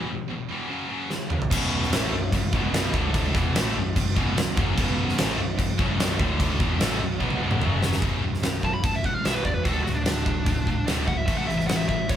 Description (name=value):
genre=hard rock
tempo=148 BPM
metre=4/4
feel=straight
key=B minor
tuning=A4 = 441 Hz
part: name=scooped high-gain guitar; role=riff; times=0.0-12.2 s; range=B1 to B3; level=-31 LUFS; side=left 6 dB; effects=distortion
part: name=scooped high-gain guitar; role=riff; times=0.0-12.2 s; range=B1 to B3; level=-32 LUFS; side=right 6 dB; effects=distortion
part: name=huge arena drum kit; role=drums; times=1.1-12.2 s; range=crash cymbal, kick drum, snare drum, toms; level=-25 LUFS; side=equal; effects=none
part: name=distorted electric guitar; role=riff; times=1.5-8.0 s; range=B1 to B3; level=-32 LUFS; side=right 1 dB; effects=distortion
part: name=overdriven picked electric bass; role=bass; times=1.5-12.2 s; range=B0 to B1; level=-29 LUFS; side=equal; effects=none
part: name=high-gain lead guitar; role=melody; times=8.6-12.2 s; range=D4 to B5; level=-28 LUFS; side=equal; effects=distortion
room=light reverb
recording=band playing live in one room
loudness=-22 LUFS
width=side -10 dB against mid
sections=0.0-1.5 A section; 1.5-8.0 B section; 8.0-12.2 C section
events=break 0.0-1.5; drum fill 1.1-1.5, 7.2-8.0; lead electric guitar solo 8.0-12.2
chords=0.0 E5; 0.7 F#5; 1.5 B5; 2.9 D5; 3.4 B5; 6.2 D5; 6.6 B5; 7.6 F#5; 8.0 B5; 9.7 D5; 11.3 A5